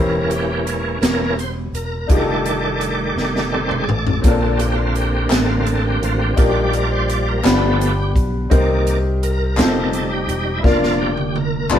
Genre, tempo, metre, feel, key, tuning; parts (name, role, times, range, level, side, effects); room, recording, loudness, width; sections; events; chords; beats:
slow gospel; 56 BPM (dotted quarters); 6/8; straight; Bb major; A4 = 439 Hz
clear grand piano; accompaniment; 0.0-11.8 s; G2 to D5; -22 LUFS; left 3 dB
bright tonewheel organ; sustained chords; 0.0-11.8 s; D3 to D5; -21 LUFS; right 2 dB; slow rotary speaker, chorus vibrato
fingered electric bass; bass; 0.0-11.8 s; E1 to C2; -22 LUFS; equal
swinging big-band drum kit; drums; 0.3-11.8 s; hi-hat, kick drum, snare drum, toms; -20 LUFS; equal
group handclap; percussion; 5.3-11.8 s; -24 LUFS; left 4 dB
moderate small room reverb, RT60 0.5 s; band playing live in one room; -16 LUFS; side -10 dB against mid
0.0-11.8 A section
tonewheel organ solo 0.0-11.8; drum fill 3.2-4.2, 10.7-11.8
0.0 C7b9/E; 2.1 F13; 4.2 Bbmaj9; 6.4 Ebmaj9/Bb; 7.5 G7; 8.5 Cm7; 9.6 F7; 10.7 Bb/F
1.03 | 2.10 3.17 | 4.24 5.31 | 6.38 7.45 | 8.52 9.58 | 10.65 11.72